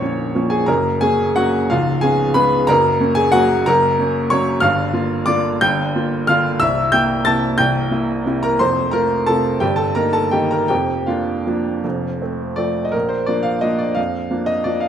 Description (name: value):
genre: classical, piano waltz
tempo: 156-196 BPM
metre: 3/4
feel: rubato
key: Bb major from 4.6 s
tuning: A4 = 440 Hz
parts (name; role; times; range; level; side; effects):
- clear baby grand piano; solo; 0.0-14.9 s; Bb0 to A6; -15 LUFS; equal; none
room: moderate recital hall reverb, RT60 1.7 s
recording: none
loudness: -15 LUFS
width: side -9 dB against mid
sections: 0.0-12.9 A section; 12.9-14.9 B section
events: none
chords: 0.0 Bbm; 0.7 Gb; 1.7 Db7; 2.7 Gb; 4.6 Gm7; 6.6 C7; 8.6 F; 9.6 Eb/G; 10.7 Bb/F; 11.8 F; 12.9 Bb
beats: 0.01 0.35 | 0.68 1.02 1.36 | 1.70 2.03 2.36 | 2.69 3.01 3.34 | 3.67 3.98 4.30 | 4.62 4.93 5.26 | 5.62 5.94 6.27 | 6.60 6.92 7.26 | 7.59 7.92 8.26 | 8.59 8.93 9.27 | 9.61 9.96 10.32 | 10.70 11.08 11.46 | 11.84 12.21 12.58 | 12.94 13.28 13.63 | 13.98 14.31 14.65